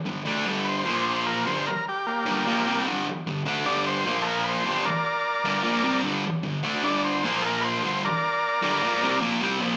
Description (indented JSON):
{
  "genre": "rock",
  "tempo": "151 BPM",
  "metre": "4/4",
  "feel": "straight",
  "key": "G minor",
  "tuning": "A4 = 440 Hz",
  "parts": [
    { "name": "thick fuzz guitar", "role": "riff", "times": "0.1-9.8 s", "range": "G2 to D4", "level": "-27 LUFS", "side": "equal", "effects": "distortion, slapback echo" },
    { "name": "overdriven combo organ", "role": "melody", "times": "0.6-9.2 s", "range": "Bb3 to D5", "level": "-28 LUFS", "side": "equal", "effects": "digital delay" }
  ],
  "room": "light reverb",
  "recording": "live gig heard through the venue's PA, club reverb, small speaker sound",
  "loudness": "-25 LUFS",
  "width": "mono",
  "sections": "0.0-9.8 A section",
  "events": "transistor combo organ solo 0.0-9.8",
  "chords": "0.0 G5; 0.9 Bb5; 1.5 Gm; 4.0 Bb5; 4.6 Gm; 7.2 Bb5; 7.8 Gm"
}